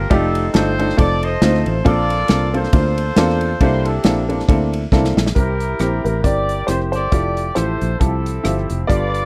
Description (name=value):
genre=uptempo gospel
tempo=137 BPM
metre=4/4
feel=swing 57% on 8ths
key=F major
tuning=A4 = 440 Hz
part: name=warm horn section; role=melody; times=0.0-9.3 s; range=C4 to Eb5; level=-25 LUFS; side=equal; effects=none
part: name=fingered electric bass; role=bass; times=0.0-9.3 s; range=F1 to E2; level=-23 LUFS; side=equal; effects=none
part: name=bright upright piano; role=accompaniment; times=0.1-9.3 s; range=G2 to D5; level=-23 LUFS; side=equal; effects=none
part: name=natural country drum kit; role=drums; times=0.1-9.2 s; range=hi-hat, kick drum, ride cymbal, rim click, snare drum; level=-19 LUFS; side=equal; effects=none
part: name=warm baby grand piano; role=melody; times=5.3-9.3 s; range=A4 to D5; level=-28 LUFS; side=equal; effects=none
room=little or no reverb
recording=dry, close 1970s-style studio recording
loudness=-17 LUFS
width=mono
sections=0.0-5.4 A section; 5.4-9.3 B section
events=drum fill 4.9-5.4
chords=0.1 F13; 1.0 F7; 1.9 Bbmaj9; 3.6 C13; 5.4 Fmaj9